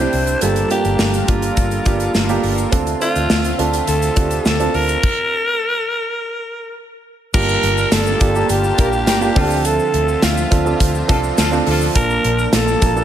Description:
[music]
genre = 1980s-style pop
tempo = 104 BPM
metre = 4/4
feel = straight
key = unclear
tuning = A4 = 440 Hz
[part]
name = raspy alto saxophone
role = melody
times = 0.0-13.0 s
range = F4 to C5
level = -20 LUFS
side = left 1 dB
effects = ping-pong delay
[part]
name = warm grand piano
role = accompaniment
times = 0.0-13.0 s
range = G2 to A5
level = -20 LUFS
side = right 5 dB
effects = none
[part]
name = sweeping resonant pad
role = sustained chords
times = 0.0-13.0 s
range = C3 to A5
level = -26 LUFS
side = left 2 dB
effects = chorus
[part]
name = vintage muted fingered electric bass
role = bass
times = 0.0-13.0 s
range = G1 to D2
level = -21 LUFS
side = equal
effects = none
[part]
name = modern studio drum kit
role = drums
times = 0.1-13.0 s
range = crash cymbal, hi-hat, kick drum, snare drum, tambourine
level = -19 LUFS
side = equal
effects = gated reverb
[part]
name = tube shaker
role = percussion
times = 0.3-13.0 s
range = none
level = -33 LUFS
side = left 9 dB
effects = none
[part]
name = mellow horn section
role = stabs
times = 8.8-11.9 s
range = D4 to Bb4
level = -26 LUFS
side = left 2 dB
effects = ping-pong delay
[sound]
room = light reverb, studio ambience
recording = none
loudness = -14 LUFS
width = side -10 dB against mid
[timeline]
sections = 0.0-7.3 A section; 7.3-13.0 B section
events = stop 5.0-7.3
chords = 0.4 Gm7; 2.7 Dm7; 5.0 N.C.; 7.3 Gm7; 9.4 Dm7; 12.0 Bbmaj7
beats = | 0.42 0.99 1.57 2.15 | 2.73 3.30 3.88 4.46 | 5.03 5.61 6.19 6.76 | 7.34 7.92 8.49 9.07 | 9.65 10.23 10.80 11.38 | 11.96 12.53

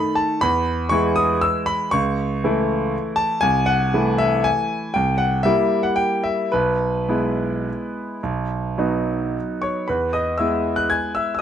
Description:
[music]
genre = classical, piano waltz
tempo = 101-126 BPM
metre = 3/4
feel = rubato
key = E major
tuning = A4 = 440 Hz
[part]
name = clear concert grand piano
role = solo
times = 0.0-11.4 s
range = B1 to G#6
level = -18 LUFS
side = equal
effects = none
[sound]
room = light reverb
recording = dark, warm production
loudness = -18 LUFS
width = side -9 dB against mid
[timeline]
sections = 0.0-9.9 A section; 9.9-11.4 B section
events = none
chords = 0.4 E; 1.9 A/C#; 3.4 Am/C; 5.0 C7; 6.5 E/B; 8.2 B; 9.9 E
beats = | 0.42 0.91 1.43 | 1.93 2.43 2.93 | 3.43 3.93 4.46 | 4.96 5.45 5.98 | 6.53 7.08 7.67 | 8.24 8.78 9.35 | 9.89 10.39 10.91 | 11.41

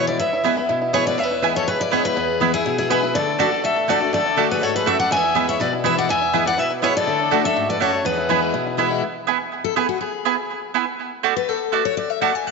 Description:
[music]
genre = bluegrass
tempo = 245 BPM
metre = 4/4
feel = straight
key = E mixolydian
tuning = A4 = 443 Hz
[part]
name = bluegrass banjo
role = melody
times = 0.0-9.0 s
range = A3 to A4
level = -28 LUFS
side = right 5 dB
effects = none
[part]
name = picked steel-string acoustic guitar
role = melody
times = 0.0-8.8 s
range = G#4 to G#5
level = -22 LUFS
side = equal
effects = none
[part]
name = picked steel-string acoustic guitar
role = accompaniment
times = 0.0-12.5 s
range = E2 to G#5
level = -24 LUFS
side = left 11 dB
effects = none
[part]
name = mandolin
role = stabs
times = 0.0-12.3 s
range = A3 to A5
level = -23 LUFS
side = right 12 dB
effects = tape echo
[part]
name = clear fiddle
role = second line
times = 0.9-8.8 s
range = E4 to E5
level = -25 LUFS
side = left 9 dB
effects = none
[sound]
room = wet plate reverb, RT60 2.5 s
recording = 1960s-style stereo with parts hard left and right, nothing above 7.7 kHz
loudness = -18 LUFS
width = side -4 dB against mid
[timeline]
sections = 0.0-9.0 A section; 9.0-12.5 B section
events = steel-string acoustic guitar solo 9.0-12.5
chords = 0.0 E; 3.1 D; 5.1 E; 7.1 D; 8.1 E; 11.0 D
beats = | 0.20 0.44 0.69 0.94 | 1.18 1.43 1.67 1.92 | 2.16 2.41 2.65 2.90 | 3.15 3.39 3.64 3.88 | 4.13 4.37 4.62 4.86 | 5.11 5.36 5.60 5.84 | 6.09 6.34 6.58 6.83 | 7.07 7.32 7.56 7.81 | 8.05 8.30 8.54 8.79 | 9.03 9.28 9.52 9.77 | 10.01 10.26 10.50 10.75 | 10.99 11.24 11.48 11.73 | 11.97 12.22 12.46

